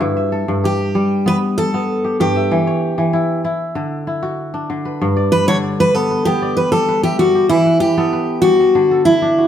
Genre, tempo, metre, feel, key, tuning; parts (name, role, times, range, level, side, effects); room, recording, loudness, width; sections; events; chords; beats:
west african traditional; 96 BPM; 4/4; straight; G lydian; A4 = 441 Hz
kora; arpeggios; 0.0-9.5 s; G2 to E5; -18 LUFS; left 1 dB
picked steel-string acoustic guitar; melody; 0.7-9.5 s; E4 to C#5; -14 LUFS; equal
moderate stone room reverb, RT60 1.0 s; band playing live in one room; -14 LUFS; side -9 dB against mid
0.0-5.0 A section; 5.0-9.5 B section
steel-string acoustic guitar solo 5.0-9.5
0.0 G; 2.5 Em; 3.8 D; 5.0 G; 7.5 Em; 8.8 D
| 0.02 0.65 1.27 1.89 | 2.52 3.14 3.77 4.39 | 5.01 5.64 6.26 6.88 | 7.51 8.13 8.76 9.38